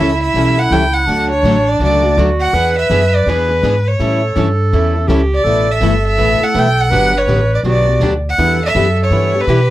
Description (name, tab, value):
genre	acoustic string swing (jazz manouche)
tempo	164 BPM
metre	4/4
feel	swing 62% on 8ths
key	unclear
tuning	A4 = 440 Hz
part	rich violin	melody	0.0-9.7 s	B4 to G5	-16 LUFS	equal	none
part	clear clarinet	second line	0.0-9.7 s	D4 to B4	-19 LUFS	right 3 dB	none
part	picked plugged-in steel-string acoustic guitar	accompaniment	0.0-9.6 s	B2 to A4	-19 LUFS	left 4 dB	none
part	picked steel-string acoustic guitar	accompaniment	0.0-9.6 s	D3 to B4	-24 LUFS	right 6 dB	none
part	upright bass	bass	0.0-9.7 s	G1 to B2	-16 LUFS	equal	none
room	light reverb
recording	dry, close 1970s-style studio recording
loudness	-11 LUFS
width	side -15 dB against mid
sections	0.0-9.7 A section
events	none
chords	0.0 A7; 1.1 D; 2.5 E7; 4.0 A7; 5.5 Asus2; 6.9 Gmaj7; 8.4 Em7